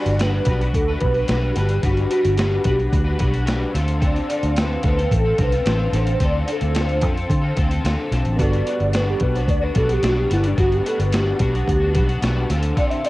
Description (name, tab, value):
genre	indie pop, bedroom pop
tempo	110 BPM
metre	4/4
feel	straight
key	G major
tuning	A4 = 441 Hz
part	soft octave-layered synth lead	melody	0.0-13.1 s	D4 to E5	-23 LUFS	equal	phaser, ensemble chorus, cassette tape, tape echo
part	electric guitar at the edge of break-up	accompaniment	0.0-13.1 s	D3 to B4	-26 LUFS	left 2 dB	ensemble chorus, vibrato effect, cassette tape
part	vintage muted fingered electric bass	bass	0.1-12.7 s	G1 to D3	-21 LUFS	equal	none
part	boom bap sampler-style drum kit	drums	0.1-13.1 s	hi-hat, kick drum, snare drum	-23 LUFS	equal	cassette tape
part	warm upright piano	accompaniment	8.4-10.6 s	B3 to A4	-30 LUFS	right 2 dB	none
room	digital ambience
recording	home recording on cassette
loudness	-17 LUFS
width	side -18 dB against mid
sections	0.0-13.1 A section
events	none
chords	0.0 Gmaj7; 3.7 Dm7; 8.4 Gmaj7; 12.5 Dm7